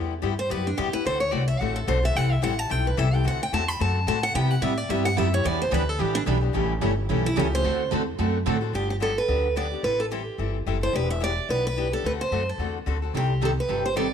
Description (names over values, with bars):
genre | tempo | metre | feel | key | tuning
acoustic string swing (jazz manouche) | 218 BPM | 4/4 | swing 56% on 8ths | unclear | A4 = 439 Hz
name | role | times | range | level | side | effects
picked steel-string acoustic guitar | accompaniment | 0.0-14.1 s | C3 to A4 | -29 LUFS | left 11 dB | none
upright bass | bass | 0.0-14.1 s | E1 to C3 | -26 LUFS | equal | none
picked steel-string acoustic guitar | melody | 0.4-14.1 s | D4 to B5 | -27 LUFS | right 2 dB | none
picked steel-string acoustic guitar | accompaniment | 4.3-8.6, 13.1-14.1 s | C3 to B4 | -28 LUFS | right 11 dB | none
room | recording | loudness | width
light reverb, studio ambience | 1960s-style stereo with parts hard left and right | -22 LUFS | side -8 dB against mid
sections
0.0-8.7 A section; 8.7-14.1 B section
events
steel-string acoustic guitar solo 0.0-8.7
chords
0.0 Cmaj7; 1.1 D7; 2.1 Am7; 3.2 D7; 4.3 Cmaj7; 5.4 Em7; 6.5 A7; 7.6 D7; 8.7 Gmaj7; 9.8 Am7; 10.9 Em7; 12.0 D7; 13.1 Cm6